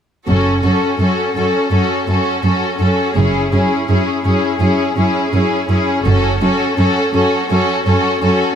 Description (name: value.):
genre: cinematic.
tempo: 83 BPM.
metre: 4/4.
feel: straight.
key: F# minor.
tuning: A4 = 440 Hz.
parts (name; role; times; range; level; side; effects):
clear symphonic violin section; melody; 0.3-8.6 s; G#4 to A4; -19 LUFS; left 2 dB; none.
clear studio violin section; second line; 0.3-8.6 s; E4 to F#4; -22 LUFS; left 1 dB; none.
clear symphonic viola section; accompaniment; 0.3-8.6 s; C#4; -19 LUFS; equal; none.
rich symphonic cello section; bass; 0.3-8.3 s; F#2; -17 LUFS; right 1 dB; none.
rich symphonic double bass section; bass; 0.3-6.4 s; F#1; -18 LUFS; right 2 dB; none.
room: light reverb.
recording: close, detailed microphones.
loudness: -13 LUFS.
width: side -8 dB against mid.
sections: 0.3-8.6 A section.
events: none.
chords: 0.3 F#m.